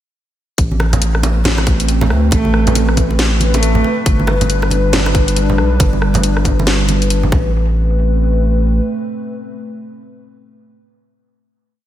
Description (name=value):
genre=deep dubstep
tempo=138 BPM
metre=4/4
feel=swing 61% on 16ths, half-time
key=A minor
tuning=A4 = 443 Hz
part: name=dark analog pad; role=sustained chords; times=1.0-10.8 s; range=G3 to B4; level=-20 LUFS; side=equal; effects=chorus
part: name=saturated sub bass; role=bass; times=0.6-8.8 s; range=G1 to D2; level=-15 LUFS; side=equal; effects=tube saturation
part: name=electronic kick drum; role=drums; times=0.6-7.4 s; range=none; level=-15 LUFS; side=equal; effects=small room reverb
part: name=garage drum kit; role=drums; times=0.6-7.2 s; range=hi-hat, rim click, snare drum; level=-20 LUFS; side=left 1 dB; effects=small room reverb
part: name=congas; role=percussion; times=0.7-7.4 s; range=none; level=-22 LUFS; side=right 2 dB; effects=dub echo
part: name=clear cello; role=melody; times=2.3-4.1 s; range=A3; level=-22 LUFS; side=right 2 dB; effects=dub echo
room=light reverb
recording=none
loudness=-12 LUFS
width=side -12 dB against mid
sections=0.6-7.5 drop; 7.5-11.0 final hit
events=drop 0.6-7.5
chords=0.6 Amadd9; 4.1 G; 7.3 Amadd9